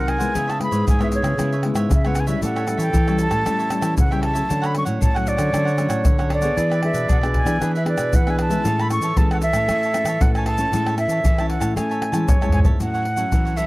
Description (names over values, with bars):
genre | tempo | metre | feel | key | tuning
samba and choro | 116 BPM | 4/4 | straight | A major | A4 = 440 Hz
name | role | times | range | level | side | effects
breathy concert flute | melody | 0.0-13.7 s | C#5 to C#6 | -24 LUFS | right 1 dB | none
warm clarinet | second line | 0.0-12.8 s | G#4 to D5 | -29 LUFS | right 2 dB | none
cavaquinho | accompaniment | 0.0-13.7 s | D4 to A5 | -32 LUFS | right 5 dB | none
nylon-string guitar | accompaniment | 0.0-13.7 s | G#2 to G#4 | -27 LUFS | left 3 dB | none
nylon-string guitar | bass | 0.0-13.7 s | F#2 to A3 | -23 LUFS | equal | none
pandeiro, tamborim, tube shaker and surdo | percussion | 0.1-13.7 s | none | -20 LUFS | equal | none
room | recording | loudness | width
light reverb | dry, close 1970s-style studio recording | -17 LUFS | side -20 dB against mid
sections
0.0-12.8 A section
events
drum fill 12.4-12.8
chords
0.3 C#m7; 2.4 A7; 4.5 Dmaj7; 6.6 E7; 8.6 Amaj7; 12.8 A6